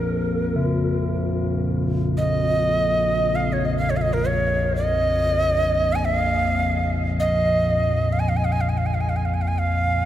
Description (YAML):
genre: world meditative, free-time meditation music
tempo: free time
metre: none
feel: none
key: Bb minor pentatonic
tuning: A4 = 440 Hz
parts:
  - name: breathy Native American-style cedar flute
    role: melody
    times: 0.0-10.1 s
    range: Bb4 to Ab5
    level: -22 LUFS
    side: right 2 dB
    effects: tape echo
  - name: analog drone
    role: drone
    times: 0.0-10.1 s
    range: Bb1 to F2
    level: -23 LUFS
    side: left 1 dB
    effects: chorus
  - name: bronze singing bowl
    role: texture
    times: 0.6-1.9 s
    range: Db3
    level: -29 LUFS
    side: left 1 dB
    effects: none
room: wet huge ambient reverb, RT60 7.0 s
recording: none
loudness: -19 LUFS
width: side -12 dB against mid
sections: 0.0-1.4 A section; 1.4-10.1 A section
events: none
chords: none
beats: free time